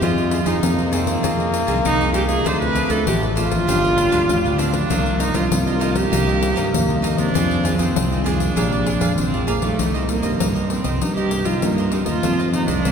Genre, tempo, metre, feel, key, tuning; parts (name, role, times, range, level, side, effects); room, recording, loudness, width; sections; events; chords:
samba and choro; 98 BPM; 4/4; straight; C dorian from 9.8 s; A4 = 435 Hz
rich viola; melody; 0.0-12.9 s; A3 to C5; -22 LUFS; right 2 dB
mellow trombone; second line; 0.0-9.8 s; F3 to Bb3; -26 LUFS; left 2 dB
cavaquinho; accompaniment; 0.0-12.9 s; D4 to F5; -28 LUFS; right 4 dB
nylon-string guitar; accompaniment; 0.0-12.9 s; F2 to Ab4; -27 LUFS; left 2 dB
fuzz fingered electric bass; bass; 0.0-12.9 s; G1 to G2; -22 LUFS; equal; overdrive
pandeiro; percussion; 0.0-12.9 s; -24 LUFS; left 3 dB
wet cathedral reverb, RT60 4.3 s; recorded in a church or concert hall; -17 LUFS; side -7 dB against mid
0.0-9.8 A section; 9.8-12.9 B section
0.0 Fm7; 2.5 Dm7; 3.7 G7; 4.9 Cm9; 7.3 Fm7; 8.6 Bb7; 9.8 Cm7; 12.2 F7